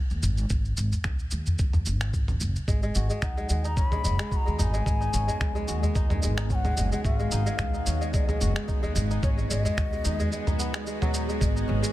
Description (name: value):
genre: organic downtempo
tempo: 110 BPM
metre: 4/4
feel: swing 55% on 16ths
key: G# minor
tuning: A4 = 440 Hz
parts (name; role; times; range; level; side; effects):
- upright bass; bass; 0.1-11.8 s; F#1 to D#2; -27 LUFS; equal; sidechain pumping
- dusty soul sampler-style drum kit; drums; 0.1-11.9 s; finger snaps, shaker, toms; -31 LUFS; equal; small room ambience, soft clipping on snare
- udu; percussion; 0.2-10.6 s; none; -29 LUFS; equal; none
- electronic kick drum; drums; 0.5-11.5 s; none; -27 LUFS; equal; small room ambience
- bowed-like drone; sustained chords; 4.4-11.9 s; D#3 to G#4; -35 LUFS; right 1 dB; built-in reverb, phaser, sidechain pumping
- kora; arpeggios; 2.7-11.9 s; F#3 to F#4; -33 LUFS; equal; tape echo
- mellow bansuri; melody; 3.2-11.9 s; C#5 to B5; -34 LUFS; left 3 dB; digital delay
room: small room ambience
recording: dense, heavily limited modern master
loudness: -24 LUFS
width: side -15 dB against mid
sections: 0.0-11.4 A section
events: none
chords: 0.0 G#m7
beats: | 0.50 1.05 1.59 2.14 | 2.68 3.23 3.77 4.32 | 4.86 5.41 5.96 6.50 | 7.05 7.59 8.14 8.68 | 9.23 9.77 10.32 10.86 | 11.41